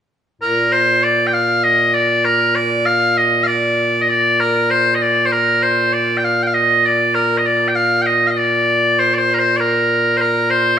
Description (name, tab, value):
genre	scottish traditional, Scottish pipe music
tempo	98 BPM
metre	4/4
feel	straight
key	Bb major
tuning	A4 = 441 Hz
part	loud bright bagpipes	solo	0.4-10.8 s	Bb2 to G5	-13 LUFS	equal	none
room	wet recital hall reverb, RT60 1.8 s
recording	minimal, uncompressed stereo recording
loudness	-13 LUFS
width	side -9 dB against mid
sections	0.4-10.2 A section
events	none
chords	none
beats	| 0.41 1.02 1.64 2.25 | 2.86 3.47 4.08 4.70 | 5.31 5.92 6.53 7.15 | 7.76 8.37 8.98 9.60 | 10.21